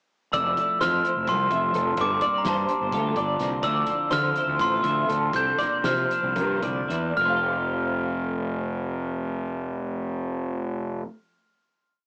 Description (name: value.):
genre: math rock and midwest emo.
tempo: 216-256 BPM (eighths).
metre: 7/8.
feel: straight.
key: F major.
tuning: A4 = 440 Hz.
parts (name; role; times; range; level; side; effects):
glockenspiel with hard plastic mallets; melody; 0.3-11.0 s; A5 to G6; -27 LUFS; equal; cassette tape.
twelve-string electric guitar; accompaniment; 0.3-11.2 s; F2 to G4; -37 LUFS; equal; subtle chorus, cassette tape.
twelve-string electric guitar; arpeggios; 0.3-11.1 s; A4 to F5; -33 LUFS; equal; tremolo, cassette tape.
fuzz fingered electric bass; bass; 0.3-11.0 s; F1 to D3; -31 LUFS; equal; overdrive.
loose indie drum kit; drums; 0.3-7.0 s; hi-hat, kick drum, snare drum; -38 LUFS; equal; cassette tape.
room: light reverb.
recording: home recording on cassette, small speaker sound.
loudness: -25 LUFS.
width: mono.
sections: 0.3-7.2 A section; 7.2-11.0 final chord.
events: slowing down 3.6-7.2.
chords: 0.3 Fmaj7; 2.0 Gm11; 3.6 Dm9; 5.3 C9sus4; 7.2 Fadd9.